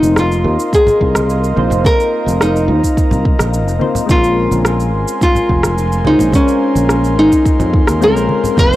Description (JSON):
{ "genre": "sunset chillout", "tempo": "107 BPM", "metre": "4/4", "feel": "straight", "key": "Bb minor", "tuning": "A4 = 439 Hz", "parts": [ { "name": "nylon-string guitar", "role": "melody", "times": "0.0-8.8 s", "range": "Db4 to C5", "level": "-14 LUFS", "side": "equal", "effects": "tape echo" }, { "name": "soft electric-piano-like synth keys", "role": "accompaniment", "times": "0.0-8.8 s", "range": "Ab3 to C5", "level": "-20 LUFS", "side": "moving between left 6 dB and right 5 dB", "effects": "chorus, auto-pan" }, { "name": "airy breathy pad", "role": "sustained chords", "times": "0.0-8.8 s", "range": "Bb4 to C6", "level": "-23 LUFS", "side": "left 1 dB", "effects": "chorus" }, { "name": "sustaining fretless electric bass", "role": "bass", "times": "0.0-8.8 s", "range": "F1 to F2", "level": "-16 LUFS", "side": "equal", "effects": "analog chorus" }, { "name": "electronic cabasa and rim click", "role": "drums", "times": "0.0-8.8 s", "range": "none", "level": "-20 LUFS", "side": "right 1 dB", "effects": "none" }, { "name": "congas", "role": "percussion", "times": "0.0-8.7 s", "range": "none", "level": "-21 LUFS", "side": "right 1 dB", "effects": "none" }, { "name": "electronic kick drum", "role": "drums", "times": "0.7-8.7 s", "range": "none", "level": "-14 LUFS", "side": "equal", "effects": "none" } ], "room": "little or no reverb", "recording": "dry, gritty hardware recording", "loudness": "-11 LUFS", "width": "side -15 dB against mid", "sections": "0.0-8.8 A section", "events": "none", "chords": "0.0 F7sus4; 4.1 Bbm9" }